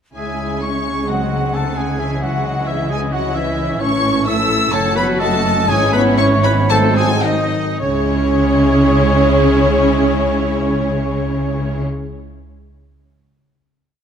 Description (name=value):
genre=classical, dramatic, fast romantic movement for symphony orchestra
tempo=106-134 BPM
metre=4/4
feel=straight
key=C# minor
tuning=A4 = 440 Hz
part: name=clear clarinet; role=second line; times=0.1-11.8 s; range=G#4 to F#5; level=-26 LUFS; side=equal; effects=none
part: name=warm symphonic violin section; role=melody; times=0.2-11.8 s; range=C#5 to E6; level=-23 LUFS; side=left 2 dB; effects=none
part: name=clear oboe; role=second line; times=0.2-11.8 s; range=D#4 to E5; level=-26 LUFS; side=equal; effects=none
part: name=small flute group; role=second line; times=0.2-11.8 s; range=C#5 to E6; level=-23 LUFS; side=right 2 dB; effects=none
part: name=warm studio violin section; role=second line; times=0.2-11.8 s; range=D#4 to C#5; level=-26 LUFS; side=left 2 dB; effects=none
part: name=warm symphonic viola section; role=accompaniment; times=0.2-11.8 s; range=E3 to C#4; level=-22 LUFS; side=equal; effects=none
part: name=dark French horn section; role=sustained chords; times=0.2-11.8 s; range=D#3 to E4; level=-21 LUFS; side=left 1 dB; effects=none
part: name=rich symphonic cello section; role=bass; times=0.2-11.8 s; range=F#2 to C#3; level=-22 LUFS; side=equal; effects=none
part: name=warm symphonic double bass section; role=bass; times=0.2-11.8 s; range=F#1 to C#2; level=-23 LUFS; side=right 2 dB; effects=none
room=moderate concert hall reverb, RT60 1.8 s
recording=none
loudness=-14 LUFS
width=side -8 dB against mid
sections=0.2-7.8 A section; 7.8-12.3 final chord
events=slowing down 2.9-7.8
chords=0.2 C#m; 1.1 G#7/C#; 2.0 C#m; 3.8 A; 4.7 F#m7; 5.7 C#m/G#; 6.7 G#7b9; 7.8 C#m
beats=| 0.16 0.62 1.08 1.54 | 2.00 2.45 2.90 3.35 | 3.81 4.26 4.73 5.20 | 5.69 6.19 6.71 7.25 | 7.81 8.37 8.93 9.49 | 10.04 10.61 11.17 11.72